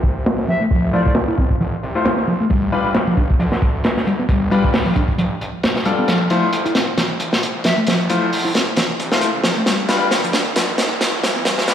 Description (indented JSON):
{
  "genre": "breakbeat, breaks",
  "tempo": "134 BPM",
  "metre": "4/4",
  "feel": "swing 56% on 16ths",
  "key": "G mixolydian",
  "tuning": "A4 = 441 Hz",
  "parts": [
    { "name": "detuned saw bass", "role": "bass", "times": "0.0-11.7 s", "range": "D1 to D2", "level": "-28 LUFS", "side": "equal", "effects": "high-pass filter" },
    { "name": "crunchy breakbeat drum kit", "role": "drums", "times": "0.0-11.7 s", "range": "hi-hat, kick drum, snare drum", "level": "-18 LUFS", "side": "equal", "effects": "low-pass filter on kick, low-pass filter on hats, low-pass filter on snare, low-pass filter on room" },
    { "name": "bright wooden flute", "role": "melody", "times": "0.5-1.1, 7.6-7.8 s", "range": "D5 to E5", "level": "-26 LUFS", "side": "equal", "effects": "small speaker sound, dub echo" },
    { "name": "picked electric bass", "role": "riff", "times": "0.5-11.7 s", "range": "E3 to E4", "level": "-22 LUFS", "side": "equal", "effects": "low-pass filter, dub echo" },
    { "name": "bright concert grand piano", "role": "stabs", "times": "0.9-11.7 s", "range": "G3 to C5", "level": "-22 LUFS", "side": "left 3 dB", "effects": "low-pass filter, dub echo" },
    { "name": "riser", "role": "sound effects", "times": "7.1-11.7 s", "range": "none", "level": "-28 LUFS", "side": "right 1 dB", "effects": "none" }
  ],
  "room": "moderate lush hall reverb, RT60 2.0 s",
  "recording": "played on a big sound system in a bare room, stone room reverb, high-pass filter",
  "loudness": "-15 LUFS",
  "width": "side -9 dB against mid",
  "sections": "0.0-11.7 A section",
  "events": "build-up 0.0-11.7; filter sweep on drum 0.0-11.7; filter sweep on picked electric bass 0.0-11.7; filter sweep on grand piano 0.0-11.7; filter sweep 0.0-11.7; drum fill 6.1-11.7; riser 7.1-11.7",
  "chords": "0.0 Fmaj7; 2.5 G7; 6.1 Fmaj7; 9.7 G7"
}